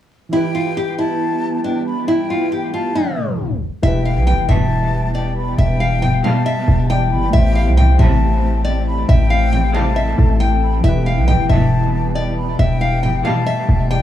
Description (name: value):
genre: hip hop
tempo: 137 BPM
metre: 4/4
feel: half-time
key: E minor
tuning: A4 = 440 Hz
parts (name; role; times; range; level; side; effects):
- nylon-string guitar; melody; 0.3-14.0 s; D4 to G5; -21 LUFS; left 1 dB; dub echo
- breathy concert flute; second line; 0.3-14.0 s; G5 to B5; -26 LUFS; left 3 dB; dub echo
- warbly lo-fi synth keys; accompaniment; 0.3-14.0 s; E3 to D5; -25 LUFS; equal; chorus, dub echo
- granular cloud pad; sustained chords; 1.0-14.0 s; E3 to A4; -26 LUFS; right 1 dB; built-in reverb
- hard-hitting 808-style bass; bass; 3.8-14.0 s; E1 to C2; -15 LUFS; equal; none
- warm symphonic string section; stabs; 4.3-13.7 s; G2 to G3; -23 LUFS; right 3 dB; dub echo
room: little or no reverb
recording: echo-heavy mix, vinyl crackle, tape stop, small room reverb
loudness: -14 LUFS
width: side -11 dB against mid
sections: 0.3-3.8 A section; 3.8-14.0 B section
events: tape stop 3.0-3.8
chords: 0.3 Em; 7.3 Am7; 10.8 Em